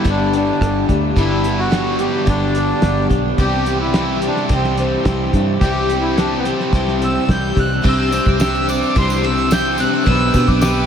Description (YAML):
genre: folk rock and heartland rock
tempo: 108 BPM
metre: 4/4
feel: straight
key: unclear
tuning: A4 = 440 Hz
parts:
  - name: accordion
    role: melody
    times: 0.0-10.9 s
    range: B3 to G6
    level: -20 LUFS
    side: equal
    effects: none
  - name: picked twelve-string acoustic guitar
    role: accompaniment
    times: 0.0-10.9 s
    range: G2 to B4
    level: -22 LUFS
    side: left 4 dB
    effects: none
  - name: biting overdriven guitar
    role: riff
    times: 0.0-10.9 s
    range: G2 to D5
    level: -21 LUFS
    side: right 2 dB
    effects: spring reverb
  - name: fingered electric bass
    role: bass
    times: 0.1-10.9 s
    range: G1 to B2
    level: -21 LUFS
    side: equal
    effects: none
  - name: cloth-damped thuddy drum kit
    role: drums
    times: 0.1-10.7 s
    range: crash cymbal, hi-hat, kick drum, ride cymbal, rim click, snare drum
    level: -21 LUFS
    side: equal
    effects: none
  - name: mellow tonewheel organ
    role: sustained chords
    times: 7.8-10.9 s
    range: B4 to D6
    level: -28 LUFS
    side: right 1 dB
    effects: slow rotary speaker
  - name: tambourine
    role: percussion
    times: 8.1-10.8 s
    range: none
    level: -34 LUFS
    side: right 6 dB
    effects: none
room: wet huge ambient reverb, RT60 7.4 s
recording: dreamy mix soaked in reverb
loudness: -14 LUFS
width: side -8 dB against mid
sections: 0.0-7.8 A section; 7.8-10.9 B section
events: none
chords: 0.0 G; 3.4 C; 7.8 Cadd9; 10.1 G/B